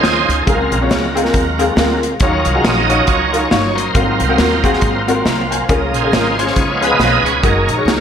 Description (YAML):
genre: uptempo gospel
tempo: 138 BPM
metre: 4/4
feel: swing 58% on 8ths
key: Db major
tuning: A4 = 441 Hz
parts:
  - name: warm upright piano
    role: accompaniment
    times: 0.0-8.0 s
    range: Ab2 to Bb5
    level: -17 LUFS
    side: left 2 dB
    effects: ensemble chorus
  - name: bright tonewheel organ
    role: sustained chords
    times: 0.0-8.0 s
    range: Eb3 to Eb5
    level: -17 LUFS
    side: right 2 dB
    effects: slow rotary speaker, overdrive, chorus vibrato
  - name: dark studio string section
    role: sustained chords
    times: 0.0-8.0 s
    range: F3 to Bb4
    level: -26 LUFS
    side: right 1 dB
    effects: none
  - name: upright bass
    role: bass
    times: 0.0-8.0 s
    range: Gb1 to Eb2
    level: -21 LUFS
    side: equal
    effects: none
  - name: modern studio drum kit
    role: drums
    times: 0.0-8.0 s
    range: hi-hat, kick drum, snare drum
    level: -18 LUFS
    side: equal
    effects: gated reverb
room: wet lush hall reverb, RT60 1.7 s, small room ambience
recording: bright 1980s-style digital production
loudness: -12 LUFS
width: side -8 dB against mid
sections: 0.0-8.0 A section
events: tonewheel organ solo 0.0-8.0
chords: 0.5 Gbmaj9#11; 2.2 Ebm9; 4.0 Ab13; 5.7 Db6; 6.6 Db7; 7.4 Gb69